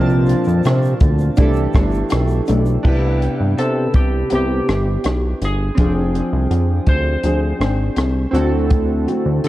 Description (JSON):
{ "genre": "indie pop, bedroom pop", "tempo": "82 BPM", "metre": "4/4", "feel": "straight", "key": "C major", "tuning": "A4 = 440 Hz", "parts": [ { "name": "clean lap steel guitar", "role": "melody", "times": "0.0-8.3 s", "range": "G4 to C5", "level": "-25 LUFS", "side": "equal", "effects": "wide subtle chorus, analog delay" }, { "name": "chorused retro synth keys", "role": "accompaniment", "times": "0.0-9.5 s", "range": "C4 to A5", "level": "-24 LUFS", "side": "right 4 dB", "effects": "cassette tape, analog delay" }, { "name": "nylon-string guitar", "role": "accompaniment", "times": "0.0-9.5 s", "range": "Bb2 to Ab4", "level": "-22 LUFS", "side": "left 2 dB", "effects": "wide subtle chorus, vibrato effect, analog delay" }, { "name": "fat analog bass", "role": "bass", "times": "0.0-9.5 s", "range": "F1 to D3", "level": "-18 LUFS", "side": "equal", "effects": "none" }, { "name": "compact cocktail drum kit", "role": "drums", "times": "0.1-9.5 s", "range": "crash cymbal, hi-hat, kick drum, rim click, shaker", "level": "-18 LUFS", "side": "equal", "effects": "none" }, { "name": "tube shaker", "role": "percussion", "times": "0.1-2.8 s", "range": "none", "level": "-54 LUFS", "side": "left 5 dB", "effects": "none" } ], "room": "light reverb, small room ambience", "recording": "echo-heavy mix, cassette tape", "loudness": "-14 LUFS", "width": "side -15 dB against mid", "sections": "0.0-2.8 A section; 2.8-9.5 B section", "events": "none", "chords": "0.0 Bbmaj7/C; 1.4 C69; 2.8 Cmaj7; 5.8 Fm6; 8.3 D7" }